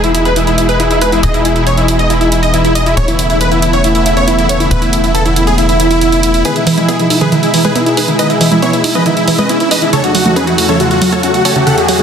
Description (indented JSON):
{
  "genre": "uplifting trance",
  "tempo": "138 BPM",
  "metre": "4/4",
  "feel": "straight",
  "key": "E major",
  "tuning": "A4 = 440 Hz",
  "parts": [
    { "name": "dense compressed supersaw", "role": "melody", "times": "0.0-12.0 s", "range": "E4 to F#5", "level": "-13 LUFS", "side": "equal", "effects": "low-pass filter, ping-pong delay" },
    { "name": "lush unison pad", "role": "sustained chords", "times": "0.0-12.0 s", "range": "E2 to A4", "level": "-16 LUFS", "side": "equal", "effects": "chorus" },
    { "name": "tight sequencer bass", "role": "bass", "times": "0.0-6.4 s", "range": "E1", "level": "-15 LUFS", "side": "equal", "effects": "none" },
    { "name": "electronic hi-hat and congas", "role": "drums", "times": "0.0-12.0 s", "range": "none", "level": "-18 LUFS", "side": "right 3 dB", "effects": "high-pass filter on hats, high-pass filter on perc, high-pass filter on room" },
    { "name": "swell and riser", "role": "sound effects", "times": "5.7-12.0 s", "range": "none", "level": "-18 LUFS", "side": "right 1 dB", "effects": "none" },
    { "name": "wide unison pluck", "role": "arpeggios", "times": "6.5-12.0 s", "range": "C#3 to F#4", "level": "-15 LUFS", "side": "right 2 dB", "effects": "ping-pong delay" }
  ],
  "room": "light reverb",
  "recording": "dense, heavily limited modern master",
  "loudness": "-9 LUFS",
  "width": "side -7 dB against mid",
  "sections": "0.0-6.5 A section; 6.5-12.0 B section",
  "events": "swell 5.7-6.5; build-up 6.5-12.0; riser 8.7-12.0",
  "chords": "0.0 Emaj7; 3.0 Aadd9/E; 6.5 Emaj7; 9.9 F#m/E",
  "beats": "0.36 0.80 | 1.23 1.67 2.10 2.54 | 2.97 3.41 3.84 4.28 | 4.71 5.15 5.58 6.02 | 6.45 6.88 7.32 7.75 | 8.19 8.62 9.06 9.49 | 9.93 10.36 10.80 11.23 | 11.67"
}